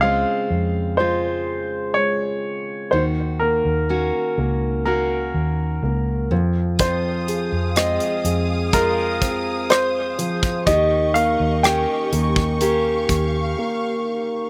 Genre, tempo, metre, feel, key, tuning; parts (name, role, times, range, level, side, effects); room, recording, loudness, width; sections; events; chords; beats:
pop ballad; 62 BPM; 4/4; straight; A4 = 439 Hz
clear concert grand piano; melody; 0.0-13.0 s; Bb4 to G5; -24 LUFS; equal
dark baby grand piano; accompaniment; 0.0-14.5 s; Db3 to Bb4; -28 LUFS; equal
fingerpicked steel-string acoustic guitar; arpeggios; 0.0-14.5 s; F2 to G4; -30 LUFS; equal; slapback echo
vintage muted fingered electric bass; bass; 0.0-13.5 s; Db2 to F2; -26 LUFS; equal
warm studio string section; sustained chords; 6.8-14.5 s; G4 to Eb6; -30 LUFS; equal
modern studio drum kit; drums; 6.8-13.3 s; hi-hat, kick drum, rim click; -24 LUFS; equal
little or no reverb; recorded outdoors, with no room sound; -21 LUFS; mono
0.0-14.5 A section
break 13.6-14.5
0.0 Dbmaj7; 2.9 Ebm7; 6.3 Fm7; 10.7 Eb7
0.02 0.99 1.96 | 2.93 3.90 4.86 5.83 | 6.80 7.77 8.73 9.70 | 10.67 11.64 12.61 13.57